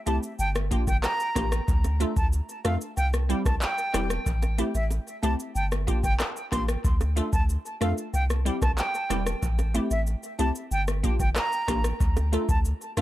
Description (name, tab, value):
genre	dancehall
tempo	93 BPM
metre	4/4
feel	straight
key	D minor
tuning	A4 = 439 Hz
part	breathy silver concert flute	melody	0.1-13.0 s	E5 to C6	-31 LUFS	right 1 dB	tape echo
part	glassy wavetable pluck	accompaniment	0.1-13.0 s	G3 to A4	-31 LUFS	equal	chorus
part	punchy sub bass	bass	0.1-13.0 s	E1 to F2	-26 LUFS	equal	none
part	booming analog drum machine	drums	0.1-13.0 s	handclaps, hi-hat, kick drum, rim click, shaker	-27 LUFS	equal	overdrive, tape echo
part	bongos	percussion	1.4-12.5 s	none	-40 LUFS	right 4 dB	none
room	digital ambience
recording	echo-heavy mix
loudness	-24 LUFS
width	side -15 dB against mid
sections	0.0-13.0 A section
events	none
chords	0.4 Gm7; 1.7 Dm; 3.0 C; 4.3 Am7; 5.6 Gm7; 6.8 Dm; 8.1 C; 9.4 Am7; 10.7 Gm7; 12.0 Dm